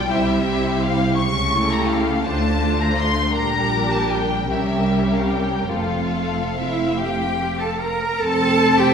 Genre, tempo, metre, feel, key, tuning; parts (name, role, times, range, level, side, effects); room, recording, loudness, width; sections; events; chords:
classical, slow romantic movement for string orchestra; 47-58 BPM (dotted quarters); 6/8; rubato; F major; A4 = 439 Hz
rich studio violin section; melody; 0.0-8.9 s; E5 to C#6; -25 LUFS; left 4 dB
rich studio violin section; second line; 0.0-8.9 s; F4 to Bb5; -25 LUFS; left 2 dB
warm studio viola section; accompaniment; 0.0-8.9 s; G3 to E4; -24 LUFS; right 1 dB
rich symphonic cello section; bass; 0.1-8.9 s; F2 to Bb4; -24 LUFS; right 2 dB
warm studio double bass section; bass; 0.1-8.9 s; F1 to D2; -24 LUFS; right 1 dB
wet scoring stage reverb, RT60 1.4 s; heard from further back in the room; -18 LUFS; side -7 dB against mid
0.0-8.2 A section
0.1 C; 1.2 A7/C#; 2.2 Dm7; 3.3 Gm/Bb; 4.5 C7b9; 5.7 F